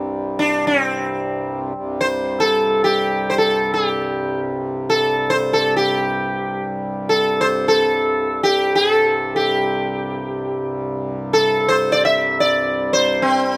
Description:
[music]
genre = indian classical, Hindustani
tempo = free time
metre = none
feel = none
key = unclear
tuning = A4 = 439 Hz
[part]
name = hand-pumped harmonium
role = drone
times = 0.0-13.6 s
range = C2 to G2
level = -27 LUFS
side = equal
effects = none
[part]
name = sitar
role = melody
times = 0.4-13.6 s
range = C4 to E5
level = -19 LUFS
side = equal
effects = slapback echo
[sound]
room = light reverb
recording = recorded outdoors, with no room sound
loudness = -19 LUFS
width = mono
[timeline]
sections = 0.0-1.7 A section; 1.7-13.6 A section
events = none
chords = none

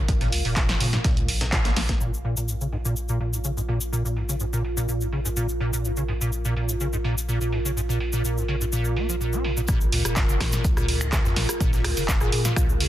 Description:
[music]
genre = acid house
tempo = 125 BPM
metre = 4/4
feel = straight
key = Bb minor pentatonic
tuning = A4 = 440 Hz
[part]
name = acid bass, square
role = riff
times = 0.0-12.9 s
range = Ab2 to Db4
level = -27 LUFS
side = equal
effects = ensemble chorus
[part]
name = deep dark ambient pad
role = texture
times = 0.0-12.9 s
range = F4 to F5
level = -32 LUFS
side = right 2 dB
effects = chorus, built-in reverb, sidechain pumping
[part]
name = warm sub bass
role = bass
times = 0.1-12.9 s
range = F1 to Bb2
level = -28 LUFS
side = equal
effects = sidechain pumping
[part]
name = breakbeat sampler-style drum kit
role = drums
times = 0.1-2.0, 9.7-12.9 s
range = hi-hat, snare drum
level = -36 LUFS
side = equal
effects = none
[part]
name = electronic kick drum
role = drums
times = 0.1-2.0, 9.7-12.7 s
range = none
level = -24 LUFS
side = equal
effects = none
[part]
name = punchy analog drum machine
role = drums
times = 0.1-12.9 s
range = finger snaps, handclaps, hi-hat, rim click, snare drum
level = -29 LUFS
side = right 1 dB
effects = low-pass filter on snare, low-pass filter on hats, low-pass filter on room
[part]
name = cabasa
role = percussion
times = 2.0-12.8 s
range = none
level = -32 LUFS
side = left 3 dB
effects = none
[part]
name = soft struck synth lead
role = melody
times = 12.2-12.6 s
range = F4 to Ab4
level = -31 LUFS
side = equal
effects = chorus, tape echo
[sound]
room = digital ambience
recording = dense, heavily limited modern master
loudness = -22 LUFS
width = side -13 dB against mid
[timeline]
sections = 0.0-2.0 A section; 2.0-9.7 B section; 9.7-12.9 C section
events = band accent 1.5; drop 9.7-12.9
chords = 0.0 Bb5

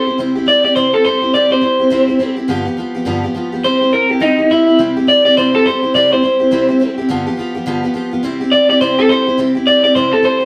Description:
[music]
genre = rock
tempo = 209 BPM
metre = 4/4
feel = swing 62% on 8ths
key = C major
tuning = A4 = 439 Hz
[part]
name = electric guitar through a small old amp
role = melody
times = 0.0-10.4 s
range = Eb4 to D5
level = -14 LUFS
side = equal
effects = slapback echo
[part]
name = picked steel-string acoustic guitar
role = accompaniment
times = 0.0-10.4 s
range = G2 to G4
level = -18 LUFS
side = equal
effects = none
[sound]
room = moderate studio ambience, RT60 0.5 s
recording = band playing live in one room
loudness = -14 LUFS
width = mono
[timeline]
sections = 0.0-4.8 A section; 4.8-10.4 A section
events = none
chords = 0.0 C; 2.5 G7; 3.6 C; 7.1 G7; 8.2 C

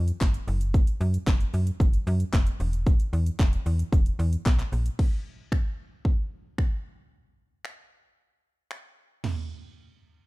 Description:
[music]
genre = dance-pop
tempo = 113 BPM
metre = 4/4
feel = straight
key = unclear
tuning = A4 = 439 Hz
[part]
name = slap-like FM bass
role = bass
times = 0.0-4.9 s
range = E1 to F#2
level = -26 LUFS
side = equal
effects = sidechain pumping
[part]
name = house drum kit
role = drums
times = 0.1-9.4 s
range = crash cymbal, finger snaps, handclaps, hi-hat, kick drum, shaker, snare drum, toms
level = -23 LUFS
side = equal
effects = none
[sound]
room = little or no reverb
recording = dark, warm production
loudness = -23 LUFS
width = side -21 dB against mid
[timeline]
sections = 0.0-5.0 A section; 5.0-9.2 B section; 9.2-10.3 C section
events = none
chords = none

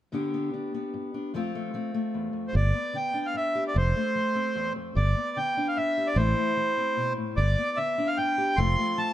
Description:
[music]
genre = folk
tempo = 149 BPM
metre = 3/4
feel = straight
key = G mixolydian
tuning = A4 = 440 Hz
[part]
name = fingerpicked steel-string acoustic guitar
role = accompaniment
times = 0.1-9.1 s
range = E2 to G4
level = -31 LUFS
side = left 3 dB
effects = none
[part]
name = accordion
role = melody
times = 2.5-9.1 s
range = C5 to C6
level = -26 LUFS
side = right 1 dB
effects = none
[part]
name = fingered electric bass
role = bass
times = 2.5-8.7 s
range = F1 to A1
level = -23 LUFS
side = equal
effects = none
[sound]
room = light reverb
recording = dark, warm production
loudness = -25 LUFS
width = side -12 dB against mid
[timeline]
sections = 0.1-2.5 A section; 2.5-9.1 B section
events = none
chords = 0.1 G; 1.3 F; 2.5 G; 3.8 F; 5.0 G; 6.2 Amadd9; 7.4 G; 8.6 F

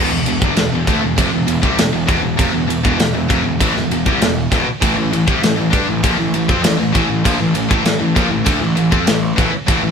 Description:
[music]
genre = heavy metal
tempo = 99 BPM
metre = 4/4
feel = straight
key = E minor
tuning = A4 = 440 Hz
[part]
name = high-gain distorted guitar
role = riff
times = 0.0-9.9 s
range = E2 to D4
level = -19 LUFS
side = left 7 dB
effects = distortion
[part]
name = high-gain distorted guitar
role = riff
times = 0.0-9.9 s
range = E2 to D4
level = -20 LUFS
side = right 6 dB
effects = distortion
[part]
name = fuzz picked electric bass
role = bass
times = 0.0-9.9 s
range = E1 to G2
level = -22 LUFS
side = equal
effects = overdrive
[part]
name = tight metal drum kit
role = drums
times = 0.3-9.8 s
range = kick drum, ride cymbal, snare drum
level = -17 LUFS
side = equal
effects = none
[sound]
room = light reverb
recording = band playing live in one room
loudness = -13 LUFS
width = side -6 dB against mid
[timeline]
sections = 0.0-9.9 A section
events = none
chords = 0.0 Em; 4.8 A5

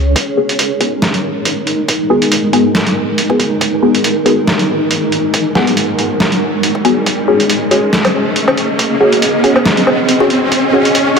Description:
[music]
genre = deep dubstep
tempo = 139 BPM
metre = 4/4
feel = swing 55% on 16ths, half-time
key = G# minor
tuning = A4 = 440 Hz
[part]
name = granular cloud pad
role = sustained chords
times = 0.0-11.2 s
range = G#3 to D#5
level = -16 LUFS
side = equal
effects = built-in reverb, vintage 12-bit sampler grit
[part]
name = electronic kick drum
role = drums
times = 0.2-10.6 s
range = none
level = -24 LUFS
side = equal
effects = overdrive, high-pass filter on kick, high-pass filter on room
[part]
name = trip hop sampler-style drum kit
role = drums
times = 0.2-11.2 s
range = hi-hat, snare drum, woodblock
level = -16 LUFS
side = equal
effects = none
[part]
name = riser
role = sound effects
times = 2.0-11.2 s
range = none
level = -19 LUFS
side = right 1 dB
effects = none
[part]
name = filtered dub chord stab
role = stabs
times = 0.4-11.2 s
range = B3 to G#4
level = -15 LUFS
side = left 1 dB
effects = phaser, dub echo
[sound]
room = wet huge ambient reverb, RT60 4.2 s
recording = none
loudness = -10 LUFS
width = side -5 dB against mid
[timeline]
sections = 0.2-11.2 A section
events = build-up 0.2-11.2; riser 2.0-11.2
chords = 0.2 G#m7; 7.1 C#sus4

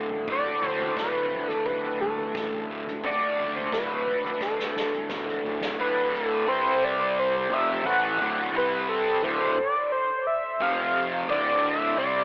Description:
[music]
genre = psychedelic rock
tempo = 87 BPM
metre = 4/4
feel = straight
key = D mixolydian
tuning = A4 = 440 Hz
[part]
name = overdriven electric guitar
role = riff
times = 0.0-12.2 s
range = D2 to F#4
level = -31 LUFS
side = equal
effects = rotary speaker, tape echo
[part]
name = fuzz fingered electric bass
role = bass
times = 0.0-12.2 s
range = D1 to D2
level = -37 LUFS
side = equal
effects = overdrive
[part]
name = soft-mallet drum kit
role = drums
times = 0.1-5.8 s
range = kick drum, snare drum, toms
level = -39 LUFS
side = equal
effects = tape echo
[part]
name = octave-doubled lead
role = melody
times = 0.3-12.2 s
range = A4 to F#5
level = -28 LUFS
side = equal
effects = chorus, tape echo
[sound]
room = moderate spring reverb, RT60 2.4 s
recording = echo-heavy mix, telephone sound, faint mains hum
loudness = -26 LUFS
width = mono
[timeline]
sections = 0.0-5.8 A section; 5.8-12.2 B section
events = drum fill 4.4-5.8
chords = 0.0 D; 5.8 D5; 6.5 C5; 7.5 D; 8.5 C5; 9.2 D5; 10.6 F5; 11.3 D5

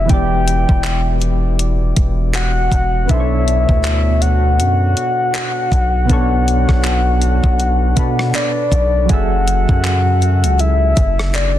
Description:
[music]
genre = contemporary R&B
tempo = 80 BPM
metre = 4/4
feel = swing 58% on 16ths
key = unclear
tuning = A4 = 438 Hz
[part]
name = soft octave-layered synth lead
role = melody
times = 0.0-11.6 s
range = D5 to G5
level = -19 LUFS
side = left 2 dB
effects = chorus, ping-pong delay
[part]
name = soft electric-piano-like synth keys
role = accompaniment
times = 0.0-11.6 s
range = B2 to E5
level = -21 LUFS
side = right 1 dB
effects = chorus
[part]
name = long sustained 808-style bass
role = bass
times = 0.0-11.6 s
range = E1 to B2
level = -16 LUFS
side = equal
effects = none
[part]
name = gated 80s digital drum machine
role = drums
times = 0.1-11.6 s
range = handclaps, hi-hat, kick drum, rim click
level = -17 LUFS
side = equal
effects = gated reverb, soft clipping on snare
[sound]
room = little or no reverb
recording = dense, heavily limited modern master, lossy compression artefacts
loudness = -13 LUFS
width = side -12 dB against mid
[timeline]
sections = 0.0-9.1 A section; 9.1-11.6 B section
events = none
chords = 0.0 Em7; 3.1 Bm7; 9.1 F#m7

